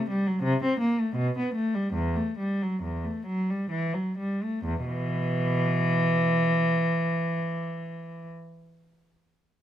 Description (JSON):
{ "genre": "classical, baroque-style suite movement for unaccompanied cello", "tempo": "62-85 BPM", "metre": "3/4", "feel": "rubato", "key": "E minor", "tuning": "A4 = 443 Hz", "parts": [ { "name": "dark cello", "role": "solo", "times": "0.0-8.3 s", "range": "E2 to C4", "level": "-25 LUFS", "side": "equal", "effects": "none" } ], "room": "light reverb", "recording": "close, detailed microphones", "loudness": "-25 LUFS", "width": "side -11 dB against mid", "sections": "0.0-4.6 A section; 4.6-9.6 B section", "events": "slowing down 0.0-4.6", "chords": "0.4 Am/C; 1.1 Gadd9/B; 1.9 Em; 4.6 E5", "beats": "0.41 1.14 | 1.93 2.80 3.71 | 4.64 5.53 6.44 | 7.34 8.23" }